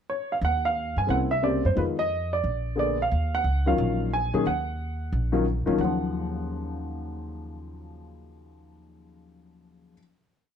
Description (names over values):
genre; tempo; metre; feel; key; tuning
jazz; 179 BPM; 4/4; swing 65% on 8ths; Eb minor; A4 = 441 Hz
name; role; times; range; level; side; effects
warm upright piano; melody; 0.1-10.0 s; Eb2 to Ab5; -26 LUFS; left 1 dB; plate reverb
upright bass; bass; 0.4-9.9 s; Bb1 to Bb2; -28 LUFS; equal; none
room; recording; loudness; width
light reverb; close, detailed microphones; -24 LUFS; side -8 dB against mid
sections
0.0-0.4 pickup bar; 0.4-5.8 A section; 5.8-8.5 final chord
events
none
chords
0.4 Ebsus2; 1.1 C7b9; 1.8 Fm7b5; 2.4 Bb7b9; 3.1 Ebm9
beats
0.09 | 0.42 0.76 1.09 1.43 | 1.76 2.10 2.44 2.77 | 3.11 3.44 3.78 4.12 | 4.45 4.79 5.12 5.46 | 5.79 6.13 6.46 6.80 | 7.13 7.47 7.80 8.13